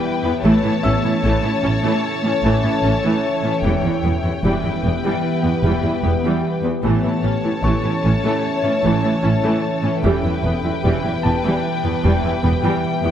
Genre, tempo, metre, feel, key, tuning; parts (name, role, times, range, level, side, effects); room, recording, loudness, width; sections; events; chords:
cinematic; 75 BPM; 4/4; straight; E dorian; A4 = 441 Hz
rich symphonic violin section; second line; 0.0-13.1 s; B4 to A5; -24 LUFS; left 4 dB
rich symphonic viola section; accompaniment; 0.0-13.1 s; E3 to E4; -23 LUFS; right 1 dB
deep dark ambient pad; sustained chords; 0.0-13.1 s; E3 to E5; -23 LUFS; equal; chorus, built-in reverb
rich symphonic cello section; bass; 0.2-13.1 s; E2 to A2; -24 LUFS; right 1 dB
rich studio double bass section; bass; 0.4-12.5 s; E1 to A1; -22 LUFS; right 1 dB
bright concert grand piano; texture; 0.8-13.1 s; C#5 to E6; -31 LUFS; left 2 dB; digital delay
moderate scoring stage reverb, RT60 1.8 s; dark, warm production; -16 LUFS; side -10 dB against mid
0.0-13.1 A section
0.4 A; 3.6 Em; 6.8 A; 10.0 Em